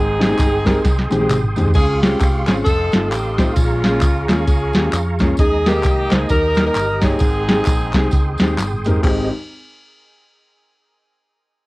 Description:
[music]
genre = uptempo gospel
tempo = 132 BPM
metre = 4/4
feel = swing 60% on 8ths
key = Ab major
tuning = A4 = 440 Hz
[part]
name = bright saxophone section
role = melody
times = 0.0-8.6 s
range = Ab3 to Bb4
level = -21 LUFS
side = equal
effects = cassette tape, tape echo
[part]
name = clear concert grand piano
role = accompaniment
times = 0.0-9.3 s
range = Ab1 to Db5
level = -21 LUFS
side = left 1 dB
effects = none
[part]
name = mellow tonewheel organ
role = sustained chords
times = 0.0-9.3 s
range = Ab3 to Eb6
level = -27 LUFS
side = right 2 dB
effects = slow rotary speaker, chorus vibrato
[part]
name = hollow-body short-scale fingered electric bass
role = bass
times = 0.0-9.3 s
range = F1 to F2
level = -22 LUFS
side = equal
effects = none
[part]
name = soft vintage rhythm box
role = drums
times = 0.2-9.2 s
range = crash cymbal, hi-hat, kick drum, snare drum, toms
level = -17 LUFS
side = equal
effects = cassette tape
[part]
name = tambourine and handclaps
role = percussion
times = 0.2-9.3 s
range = none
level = -30 LUFS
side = left 2 dB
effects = none
[sound]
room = light reverb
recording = home recording on cassette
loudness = -14 LUFS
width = side -21 dB against mid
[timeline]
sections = 0.0-1.7 A section; 1.7-9.0 B section; 9.0-10.9 C section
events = drum fill 0.8-1.7, 8.6-9.0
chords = 0.0 Abmaj7; 1.7 Dbmaj7; 2.7 F7; 3.6 Bbm7; 5.4 Ebsus4; 6.3 Eb; 7.2 Abmaj7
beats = 0.39 0.84 1.30 | 1.75 2.20 2.66 3.11 | 3.56 4.02 4.47 4.93 | 5.39 5.84 6.30 6.76 | 7.21 7.67 8.13 8.59 | 9.04

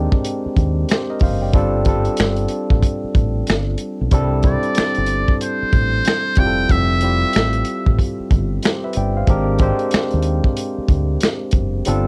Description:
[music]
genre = R&B, neo-soul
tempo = 93 BPM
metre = 4/4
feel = swing 61% on 16ths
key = unclear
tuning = A4 = 438 Hz
[part]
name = barky tine electric piano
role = accompaniment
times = 0.0-12.1 s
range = G3 to G5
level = -24 LUFS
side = equal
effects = overdrive, cassette tape
[part]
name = deep dub fingered electric bass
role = bass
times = 0.0-12.1 s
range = F1 to Eb2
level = -22 LUFS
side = equal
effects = none
[part]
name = warm soul drum kit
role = drums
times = 0.1-12.0 s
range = finger snaps, hi-hat, kick drum, snare drum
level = -20 LUFS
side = equal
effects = cassette tape
[part]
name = trumpet with metal mute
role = melody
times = 4.5-8.0 s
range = C5 to G5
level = -23 LUFS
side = equal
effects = cassette tape
[sound]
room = light reverb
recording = home recording on cassette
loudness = -18 LUFS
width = mono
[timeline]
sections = 0.0-12.1 A section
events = kick muted 11.9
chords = 0.0 Abmaj9#11; 1.5 G9sus4; 4.1 C69; 6.4 Fmaj9; 9.3 Abmaj9#11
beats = 0.24 0.89 | 1.53 2.18 2.82 3.47 | 4.12 4.76 5.41 6.05 | 6.70 7.34 7.99 8.63 | 9.28 9.92 10.57 11.21 | 11.86

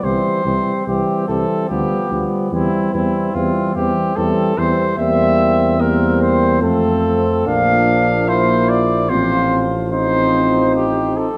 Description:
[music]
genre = classical, brass quintet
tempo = 73 BPM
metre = 3/4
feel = rubato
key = C major, F major from 5.0 s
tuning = A4 = 442 Hz
[part]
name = mellow trumpet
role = melody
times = 0.0-11.4 s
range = E4 to F5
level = -22 LUFS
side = equal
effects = none
[part]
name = warm flugelhorn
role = second line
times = 0.0-11.3 s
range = B3 to F4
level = -25 LUFS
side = equal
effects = none
[part]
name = dark French horn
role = accompaniment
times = 0.0-11.3 s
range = G3 to C4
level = -23 LUFS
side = equal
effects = none
[part]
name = warm trombone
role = accompaniment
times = 0.0-11.3 s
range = E3 to G3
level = -25 LUFS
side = equal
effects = none
[part]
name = dark tuba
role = bass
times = 0.0-11.3 s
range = A1 to F2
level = -24 LUFS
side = equal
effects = none
[sound]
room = wet concert hall reverb, RT60 2.3 s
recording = none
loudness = -16 LUFS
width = mono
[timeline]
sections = 0.0-11.4 A section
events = none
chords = 0.0 C; 1.7 G7/D; 2.5 C/E; 5.0 C7/E; 6.6 F; 7.5 Bb; 9.1 F/A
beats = | 0.04 0.88 1.71 | 2.53 3.35 4.17 | 4.99 5.80 6.63 | 7.47 8.29 9.11 | 9.93 10.75

